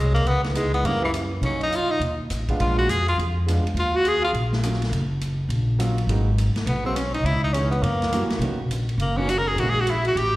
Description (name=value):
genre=jazz, small-group swing and bop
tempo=206 BPM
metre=4/4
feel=swing 62% on 8ths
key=Eb minor, G# minor from 6.1 s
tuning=A4 = 439 Hz
part: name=edgy tenor saxophone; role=melody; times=0.0-4.3, 6.7-10.4 s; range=Eb3 to A#4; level=-23 LUFS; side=left 1 dB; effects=slapback echo
part: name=upright bass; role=bass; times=0.0-10.4 s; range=Gb1 to Gb2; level=-23 LUFS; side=equal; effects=none
part: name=swinging big-band drum kit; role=drums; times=0.2-10.2 s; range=hi-hat, kick drum, ride cymbal, rim click, snare drum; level=-33 LUFS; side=equal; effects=none
part: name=bright grand piano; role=accompaniment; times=0.6-9.8 s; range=D#3 to F#4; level=-29 LUFS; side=right 2 dB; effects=slapback echo
part: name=breathy alto saxophone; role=second line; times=0.8-4.3, 6.7-10.4 s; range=Fb3 to A#4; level=-30 LUFS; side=right 2 dB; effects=none
room=light reverb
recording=live gig heard through the venue's PA, recital hall reverb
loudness=-20 LUFS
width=side -17 dB against mid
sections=0.0-6.1 A section; 6.1-10.4 B section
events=none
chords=0.3 Dbm7; 0.8 Gb7b9; 1.4 Bmaj9; 2.6 Bb7b9; 3.8 Ebm9; 6.1 G#m9; 7.2 C#m7; 7.8 F#7b9; 8.4 Bmaj9; 9.6 A#m7b5